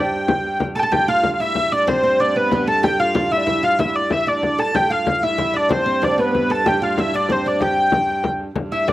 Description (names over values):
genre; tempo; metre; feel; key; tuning
medieval dance; 126 BPM (dotted quarters); 6/8; straight; G mixolydian; A4 = 439 Hz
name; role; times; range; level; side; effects
warm hurdy-gurdy; melody; 0.0-8.9 s; B4 to A5; -20 LUFS; equal; none
oud; second line; 0.0-8.9 s; B3 to A4; -23 LUFS; right 3 dB; slapback echo
rich viola da gamba; drone; 0.0-8.9 s; G2; -28 LUFS; right 2 dB; none
frame drum; percussion; 0.3-8.9 s; none; -23 LUFS; left 3 dB; none
mellow tenor recorder; second line; 0.8-8.9 s; B4 to A5; -24 LUFS; left 3 dB; none
room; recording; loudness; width
little or no reverb; recorded outdoors, with no room sound; -16 LUFS; side -15 dB against mid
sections
0.9-8.6 A section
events
none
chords
none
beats
0.43 | 0.92 1.40 | 1.88 2.35 | 2.83 3.31 | 3.79 4.27 | 4.75 5.22 | 5.70 6.18 | 6.66 7.13 | 7.61 8.08 | 8.56